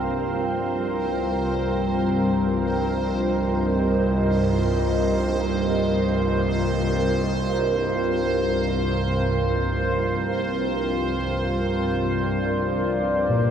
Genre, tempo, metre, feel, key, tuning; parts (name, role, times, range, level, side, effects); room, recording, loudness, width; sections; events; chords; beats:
dark ambient drone; free time; C minor; A4 = 440 Hz
deep dark ambient pad; sustained chords; 0.0-13.5 s; C4 to F5; -24 LUFS; right 1 dB; chorus, built-in reverb, shimmer reverb
gamelan-type bossed gongs; arpeggios; 0.0-2.9, 13.3-13.5 s; Bb2 to Bb3; -29 LUFS; left 1 dB; diffuse ambient delay
bowed-like drone; drone; 0.0-13.5 s; C2 to G2; -24 LUFS; equal; built-in reverb, phaser
bubbling stepped-filter texture; texture; 0.0-13.5 s; C5; -31 LUFS; right 1 dB; chorus, built-in reverb, shimmer reverb
wet huge ambient reverb, RT60 7.3 s; -21 LUFS; side -8 dB against mid
0.0-13.5 A section
fade-in on synth texture 0.0-13.5
0.0 Cm
free time